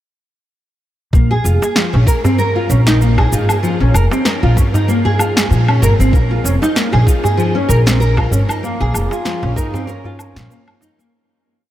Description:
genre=organic downtempo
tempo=96 BPM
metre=4/4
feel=swing 56% on 16ths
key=Bb minor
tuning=A4 = 440 Hz
part: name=nylon-string guitar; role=arpeggios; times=1.1-11.1 s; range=F3 to Bb4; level=-17 LUFS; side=equal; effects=ensemble chorus, tape echo
part: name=upright bass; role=bass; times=1.1-10.5 s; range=F1 to Bb2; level=-13 LUFS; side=equal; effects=sidechain pumping
part: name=electronic cabasa, snare drum and woodblock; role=drums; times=1.1-11.1 s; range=none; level=-21 LUFS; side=equal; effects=none
part: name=electronic kick drum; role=drums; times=1.1-9.7 s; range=none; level=-14 LUFS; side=equal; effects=none
part: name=darbuka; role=percussion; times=1.6-11.0 s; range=none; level=-21 LUFS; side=right 1 dB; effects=none
part: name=mellow duduk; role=melody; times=8.6-10.8 s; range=Bb3 to F4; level=-26 LUFS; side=equal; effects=tape echo
room=moderate huge ambient reverb, RT60 8.5 s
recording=dreamy mix soaked in reverb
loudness=-12 LUFS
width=side -13 dB against mid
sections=1.1-11.1 groove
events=fade-out 7.8-11.1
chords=1.1 Bb5

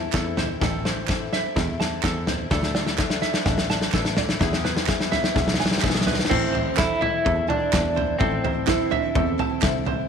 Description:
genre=indie folk with a building arrangement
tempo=126 BPM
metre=4/4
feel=straight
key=A minor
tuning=A4 = 440 Hz
part: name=fingerpicked steel-string acoustic guitar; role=accompaniment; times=0.0-0.6 s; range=A2 to E4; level=-38 LUFS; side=left 13 dB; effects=none
part: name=picked twelve-string acoustic guitar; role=accompaniment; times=0.0-10.1 s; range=E2 to E4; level=-32 LUFS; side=left 13 dB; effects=lush chorus
part: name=warm upright piano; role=accompaniment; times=0.0-10.1 s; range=A1 to E5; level=-33 LUFS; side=left 13 dB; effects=none
part: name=open-back banjo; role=arpeggios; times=0.0-10.1 s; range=G#4 to A5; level=-30 LUFS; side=right 10 dB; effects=none
part: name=picked electric bass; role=bass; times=0.0-10.0 s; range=A1 to E2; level=-29 LUFS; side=equal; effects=none
part: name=loose indie drum kit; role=drums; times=0.1-10.0 s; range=crash cymbal, kick drum, snare drum, toms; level=-23 LUFS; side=equal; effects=none
part: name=group handclap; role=percussion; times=0.1-9.7 s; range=none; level=-32 LUFS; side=right 13 dB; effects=none
part: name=electric guitar through a small old amp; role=melody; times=6.3-9.1 s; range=C4 to E4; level=-25 LUFS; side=equal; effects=tremolo
part: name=nylon-string guitar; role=second line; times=6.3-10.1 s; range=C4 to E4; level=-28 LUFS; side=right 16 dB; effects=none
room=light reverb, studio reverb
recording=1960s-style stereo with parts hard left and right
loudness=-20 LUFS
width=side -7 dB against mid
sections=0.0-6.3 A section; 6.3-10.1 B section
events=build-up 0.0-6.3; drum fill 0.0-6.3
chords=0.0 Am; 2.5 Dsus2; 4.4 E; 6.3 Am

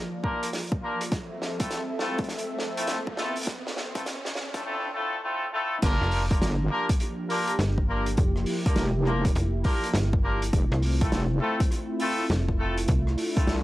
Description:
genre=glitch hop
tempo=102 BPM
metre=4/4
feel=swing 64% on 16ths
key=G dorian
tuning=A4 = 440 Hz
part: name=warm analog pad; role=sustained chords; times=0.0-13.6 s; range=F3 to E5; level=-33 LUFS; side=equal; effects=chorus, sidechain pumping
part: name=riser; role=sound effects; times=0.1-4.7 s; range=none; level=-40 LUFS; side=right 1 dB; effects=none
part: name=brilliant horn section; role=stabs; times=0.2-13.6 s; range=A3 to Bb4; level=-30 LUFS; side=left 1 dB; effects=vintage 12-bit sampler grit, sidechain pumping, low-pass filter, analog delay
part: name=electronic kick drum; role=drums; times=0.2-13.5 s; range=none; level=-25 LUFS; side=equal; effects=overdrive
part: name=vintage drum kit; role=drums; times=0.4-13.6 s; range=crash cymbal, hi-hat, rim click, snare drum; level=-33 LUFS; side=equal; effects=high-pass filter on hats, high-pass filter on cymbals, high-pass filter on snare, high-pass filter on room
part: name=wobble bass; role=bass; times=5.8-13.6 s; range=F1 to C2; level=-26 LUFS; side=equal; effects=chorus, tube saturation
part: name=slap-like FM bass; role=bass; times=6.0-13.2 s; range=F1 to C2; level=-26 LUFS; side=equal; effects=none
room=small room ambience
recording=high-pass filter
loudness=-24 LUFS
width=side -16 dB against mid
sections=0.0-5.8 A section; 5.8-13.6 B section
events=build-up 0.0-5.8; drum fill 0.0-4.7; filter sweep on horn section 0.0-5.8; riser 0.1-4.7; drop 5.8-13.6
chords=0.0 Gm7; 1.1 Fmaj7; 5.8 Gm7; 10.5 Fmaj7

